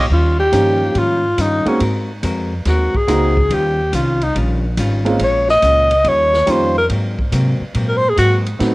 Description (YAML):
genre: jazz, big band swing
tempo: 141 BPM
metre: 4/4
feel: swing 68% on 8ths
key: Eb mixolydian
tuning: A4 = 440 Hz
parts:
  - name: upright bass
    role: bass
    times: 0.0-8.7 s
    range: Ab1 to C3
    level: -18 LUFS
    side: equal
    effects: none
  - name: clear alto saxophone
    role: melody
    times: 0.1-8.4 s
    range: Db4 to Eb5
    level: -15 LUFS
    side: equal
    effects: cassette tape, plate reverb
  - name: hollow-body jazz guitar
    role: accompaniment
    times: 0.1-8.7 s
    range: Ab2 to Bb4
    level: -24 LUFS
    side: left 2 dB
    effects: none
  - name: swinging big-band drum kit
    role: drums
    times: 0.1-8.7 s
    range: hi-hat, kick drum, ride cymbal, snare drum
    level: -26 LUFS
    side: equal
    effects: cassette tape
  - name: warm concert grand piano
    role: accompaniment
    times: 0.5-8.7 s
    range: F3 to G4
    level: -19 LUFS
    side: right 2 dB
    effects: plate reverb
room: moderate studio reverb, RT60 0.5 s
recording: home recording on cassette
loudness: -13 LUFS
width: side -21 dB against mid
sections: 0.1-8.7 A section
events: alto saxophone solo 0.1-8.7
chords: 0.1 Eb9; 1.8 Ab9; 3.5 Eb9; 5.2 Bbm7; 6.1 Eb9; 6.9 Ab9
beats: | 0.10 0.53 0.95 1.38 | 1.80 2.23 2.65 3.08 | 3.50 3.93 4.35 4.78 | 5.20 5.63 6.05 6.48 | 6.90 7.33 7.75 8.18 | 8.60